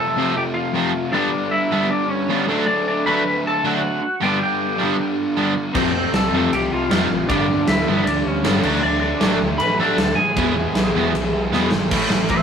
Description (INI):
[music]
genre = punk rock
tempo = 156 BPM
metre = 4/4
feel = straight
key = unclear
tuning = A4 = 440 Hz
[part]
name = lightly driven lead guitar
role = melody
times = 0.0-12.4 s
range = C4 to B5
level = -22 LUFS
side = equal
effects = none
[part]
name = fuzz guitar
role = riff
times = 0.0-12.4 s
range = F2 to E4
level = -23 LUFS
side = equal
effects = distortion
[part]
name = distorted electric guitar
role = riff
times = 0.2-12.4 s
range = E2 to D4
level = -25 LUFS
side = left 4 dB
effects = distortion
[part]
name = distorted electric guitar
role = riff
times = 0.2-12.4 s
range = F2 to E4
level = -25 LUFS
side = right 6 dB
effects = overdrive
[part]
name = big rock drum kit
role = drums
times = 5.7-12.4 s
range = crash cymbal, kick drum, ride cymbal, snare drum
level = -22 LUFS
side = equal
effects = none
[part]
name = overdriven picked electric bass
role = bass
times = 5.8-12.4 s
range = E1 to A2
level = -28 LUFS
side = equal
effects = none
[sound]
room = light reverb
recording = rough rehearsal-room recording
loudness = -17 LUFS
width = side -7 dB against mid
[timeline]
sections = 0.0-11.9 A section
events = half time 0.0-11.9; drum fill 11.5-11.9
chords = 0.0 F; 1.1 G; 2.5 D; 4.2 G; 5.7 F; 7.3 G; 8.6 D; 10.4 E; 11.9 A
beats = 0.36 0.74 | 1.13 1.51 1.90 2.28 | 2.67 3.05 3.44 3.82 | 4.21 4.59 4.98 5.36 | 5.75 6.13 6.52 6.91 | 7.29 7.68 8.06 8.45 | 8.83 9.22 9.60 9.99 | 10.37 10.76 11.14 11.53 | 11.91 12.30